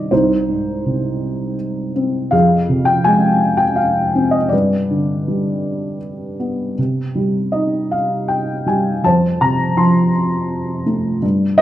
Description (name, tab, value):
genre	classical, lyrical solo piano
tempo	81 BPM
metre	3/4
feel	rubato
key	unclear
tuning	A4 = 439 Hz
part	felt-muted upright piano	solo	0.0-11.6 s	C2 to C6	-15 LUFS	equal	none
room	moderate recital hall reverb, RT60 1.3 s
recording	dark, warm production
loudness	-15 LUFS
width	side -12 dB against mid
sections	0.0-11.6 A section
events	none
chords	0.1 Ab/C; 2.3 Fm; 4.5 G; 6.8 Cm; 9.0 F